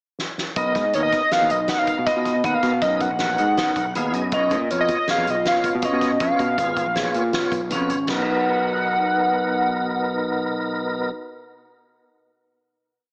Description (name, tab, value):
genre	progressive instrumental, band music in an uneven meter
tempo	160 BPM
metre	5/4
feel	straight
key	B lydian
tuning	A4 = 440 Hz
part	soft-mallet drum kit	drums	0.2-8.2 s	crash cymbal, hi-hat, kick drum, snare drum	-32 LUFS	equal	none
part	hollow square lead	melody	0.6-11.1 s	C#5 to F#5	-24 LUFS	equal	chorus, tape echo
part	tonewheel organ	accompaniment	0.6-11.1 s	B2 to F#5	-29 LUFS	equal	chorus vibrato, fast rotary speaker
part	vibraphone with hard mallets	arpeggios	0.6-11.2 s	B3 to B4	-29 LUFS	equal	none
part	growling fingered electric bass	bass	0.6-11.1 s	G#1 to B2	-30 LUFS	equal	overdrive
room	moderate plate reverb, RT60 2.4 s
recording	small speaker sound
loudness	-22 LUFS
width	mono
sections	0.0-0.6 pickup bar; 0.6-8.1 groove; 8.1-11.8 final chord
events	drum fill 0.2-0.6; tonewheel organ fill 3.6-4.3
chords	0.0 N.C.; 0.6 Bmaj7; 4.3 C#/B; 8.1 Bmaj7